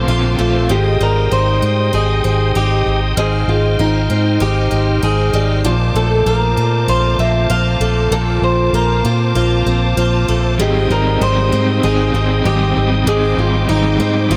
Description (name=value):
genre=dream pop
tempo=97 BPM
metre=4/4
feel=straight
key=unclear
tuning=A4 = 440 Hz
part: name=electric guitar at the edge of break-up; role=melody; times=0.0-14.4 s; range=Eb4 to F5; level=-22 LUFS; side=equal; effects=delay
part: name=overdriven electric guitar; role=accompaniment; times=0.0-0.7, 10.6-14.4 s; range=Ab2 to F4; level=-24 LUFS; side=equal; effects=tremolo, lush chorus
part: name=bright tonewheel organ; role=sustained chords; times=0.0-14.4 s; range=C5 to F6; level=-25 LUFS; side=equal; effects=chorus vibrato, lush chorus
part: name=picked twelve-string acoustic guitar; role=arpeggios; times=0.0-14.4 s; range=Ab2 to F4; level=-22 LUFS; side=equal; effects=analog chorus, delay
part: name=vintage muted fingered electric bass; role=bass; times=0.0-14.4 s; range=Ab1 to Bb2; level=-18 LUFS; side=equal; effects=none
room=moderate shimmer reverb, RT60 5.6 s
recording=none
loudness=-15 LUFS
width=mono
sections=0.7-14.4 A section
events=none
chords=0.0 Bbmaj9; 0.7 Abmaj7; 5.6 Bbmaj9; 10.6 Abmaj7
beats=0.07 | 0.69 1.31 1.93 2.55 | 3.17 3.79 4.40 5.02 | 5.64 6.26 6.88 7.50 | 8.12 8.73 9.35 9.97 | 10.59 11.21 11.83 12.45 | 13.06 13.68 14.30